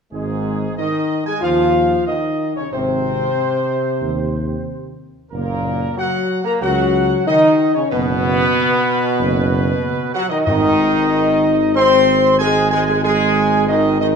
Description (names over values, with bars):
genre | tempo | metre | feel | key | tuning
classical | 93 BPM | 4/4 | straight | Ab mixolydian | A4 = 440 Hz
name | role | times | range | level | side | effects
warm trumpet section | melody | 0.1-14.1 s | Ab4 to C6 | -23 LUFS | right 2 dB | none
brilliant trombone section | sustained chords | 0.1-14.2 s | Ab2 to C4 | -22 LUFS | right 4 dB | none
mellow French horn section | sustained chords | 0.1-14.1 s | Ab3 to C5 | -17 LUFS | left 3 dB | none
dark tuba | bass | 0.1-14.2 s | F#1 to Eb2 | -22 LUFS | right 2 dB | none
timpani | percussion | 10.5-11.4 s | Ab2 | -26 LUFS | equal | none
room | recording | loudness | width
wet recital hall reverb, RT60 1.5 s | minimal, uncompressed stereo recording | -14 LUFS | side -6 dB against mid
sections
0.1-14.2 A section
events
none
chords
0.1 Ab; 5.3 Gb; 7.9 B5/F#; 10.5 Ab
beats
| 0.12 0.78 1.42 2.07 | 2.72 3.38 4.02 4.67 | 5.33 5.98 6.62 7.26 | 7.91 8.55 9.19 9.83 | 10.47 11.10 11.76 12.40 | 13.04 13.68